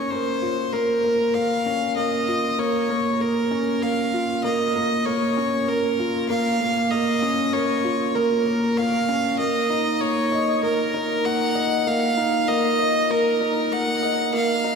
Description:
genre	piano and strings electronica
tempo	97 BPM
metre	4/4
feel	straight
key	Bb minor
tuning	A4 = 440 Hz
part	clear violin	melody	0.0-14.8 s	Bb4 to Gb5	-23 LUFS	equal	ping-pong delay
part	felt-muted upright piano	riff	0.0-14.8 s	Bb3 to Eb5	-22 LUFS	equal	wide subtle chorus
room	wet lush hall reverb, RT60 3.0 s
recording	dreamy mix soaked in reverb, high-pass filter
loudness	-20 LUFS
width	side -5 dB against mid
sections	0.0-14.8 A section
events	build-up 0.0-14.8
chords	0.0 Bbm; 9.4 Ebm/Bb

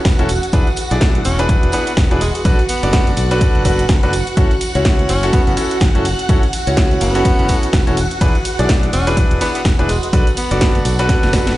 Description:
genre	piano house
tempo	125 BPM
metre	4/4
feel	swing 59% on 16ths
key	unclear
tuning	A4 = 440 Hz
part	string machine, violins	sustained chords	0.0-11.6 s	F#4 to F#5	-24 LUFS	right 1 dB	ensemble chorus, sidechain pumping
part	fingered electric bass	bass	0.1-11.5 s	E1 to C#2	-19 LUFS	equal	tube saturation, sidechain pumping
part	electronic kick drum	drums	0.1-11.4 s	none	-15 LUFS	equal	overdrive
part	house drum kit	drums	0.1-11.6 s	hi-hat, ride cymbal, snare drum	-23 LUFS	equal	none
part	tambourine	percussion	0.1-11.6 s	none	-33 LUFS	right 2 dB	none
part	clear concert grand piano	riff	0.2-11.5 s	C#4 to D5	-20 LUFS	equal	sidechain pumping
part	bright tenor saxophone	melody	1.2-10.8 s	G#3 to C#4	-25 LUFS	equal	dub echo
room	light reverb, digital ambience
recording	played on a big sound system in a bare room, stone room reverb, nothing above 10.6 kHz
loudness	-12 LUFS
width	side -16 dB against mid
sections	0.0-11.6 A section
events	drum fill 11.1-11.6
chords	0.3 E7; 2.5 Bm7; 4.4 F#m7; 8.0 E7; 10.1 Bm7

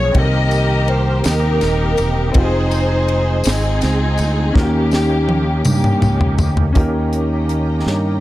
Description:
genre	slow gospel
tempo	54 BPM (dotted quarters)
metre	6/8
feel	straight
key	unclear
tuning	A4 = 440 Hz
part	warm studio string section	melody	0.0-6.7 s	Bb3 to Eb5	-20 LUFS	left 1 dB	none
part	clear baby grand piano	accompaniment	0.0-8.2 s	C3 to Bb4	-24 LUFS	left 1 dB	none
part	bright tonewheel organ	sustained chords	0.0-8.2 s	Eb3 to Ab4	-24 LUFS	right 4 dB	fast rotary speaker, overdrive, chorus vibrato
part	fingered electric bass	bass	0.0-8.2 s	Eb1 to G2	-18 LUFS	equal	none
part	tight funk drum kit	drums	0.1-8.0 s	hi-hat, kick drum, ride cymbal, snare drum, toms	-18 LUFS	equal	none
part	tambourine	percussion	0.5-6.7 s	none	-32 LUFS	left 4 dB	none
part	dark studio string section	sustained chords	6.8-8.2 s	Db5 to Bb5	-30 LUFS	left 2 dB	none
room	studio reverb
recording	dark, warm production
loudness	-14 LUFS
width	side -15 dB against mid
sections	0.0-6.8 A section; 6.8-8.2 B section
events	drum fill 4.6-6.8, 7.9-8.2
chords	0.1 Cm7; 2.3 Fm7; 4.6 Eb7

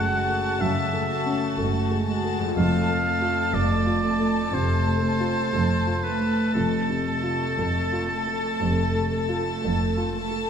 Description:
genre	cinematic, emotional film score for orchestra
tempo	60 BPM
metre	4/4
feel	rubato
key	unclear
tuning	A4 = 443 Hz
part	warm chamber violin section	melody	0.0-10.5 s	A5	-33 LUFS	left 3 dB	none
part	bright oboe	second line	0.0-10.1 s	A4 to F#5	-28 LUFS	right 1 dB	none
part	warm symphonic violin section	second line	0.0-10.5 s	F#4 to A4	-32 LUFS	left 3 dB	none
part	warm grand piano	accompaniment	0.0-10.5 s	F2 to A4	-29 LUFS	left 2 dB	none
part	warm studio viola section	accompaniment	0.0-10.5 s	G#3 to A3	-29 LUFS	right 3 dB	none
part	dark studio cello section	bass	0.0-10.5 s	F2 to F#2	-30 LUFS	right 2 dB	none
part	rich symphonic double bass section	bass	0.0-10.5 s	F1 to F#1	-30 LUFS	right 2 dB	none
part	concert harp	arpeggios	2.4-6.4 s	F2 to A4	-35 LUFS	left 8 dB	none
room	wet scoring stage reverb, RT60 1.5 s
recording	minimal, uncompressed stereo recording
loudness	-21 LUFS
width	side -7 dB against mid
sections	0.0-10.5 A section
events	none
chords	0.0 F#madd9; 2.6 F

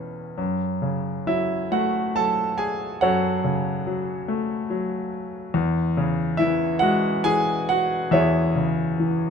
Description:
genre	classical, lyrical solo piano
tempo	69 BPM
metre	3/4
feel	rubato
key	unclear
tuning	A4 = 440 Hz
part	clear concert grand piano	solo	0.0-9.3 s	E2 to A5	-21 LUFS	equal	none
room	light reverb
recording	close, detailed microphones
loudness	-21 LUFS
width	side -6 dB against mid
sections	0.0-9.3 A section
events	grand piano fill 9.0-9.3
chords	0.4 F#m; 5.5 C#m/E

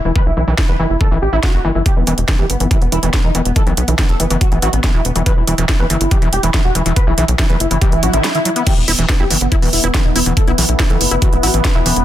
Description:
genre	psychedelic trance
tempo	141 BPM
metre	4/4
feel	straight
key	E minor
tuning	A4 = 438 Hz
part	tight sequencer bass	bass	0.0-12.0 s	E1 to B1	-17 LUFS	equal	tube saturation
part	wide unison lead	melody	0.1-12.0 s	B3 to B4	-21 LUFS	equal	phaser, cassette tape, sidechain pumping, tape echo
part	overdriven acid bass	riff	0.1-11.9 s	D#3 to F#4	-21 LUFS	equal	distortion, auto-pan, sidechain pumping, ping-pong delay
part	electronic kick drum	drums	0.2-11.7 s	none	-14 LUFS	equal	overdrive
part	drum and bass drum kit	drums	0.6-12.0 s	crash cymbal, hi-hat, snare drum	-19 LUFS	right 1 dB	overdrive
part	swell	sound effects	7.9-8.7 s	none	-22 LUFS	right 1 dB	none
part	evolving wavetable pad	sustained chords	9.0-12.0 s	E3 to B3	-22 LUFS	left 2 dB	phaser, built-in reverb, sidechain pumping
room	little or no reverb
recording	dense, heavily limited modern master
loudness	-12 LUFS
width	side -12 dB against mid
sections	0.0-12.0 A section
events	filter sweep on acid bass 0.0-12.0; swell 7.9-8.7; break 8.2-8.7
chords	0.0 E5

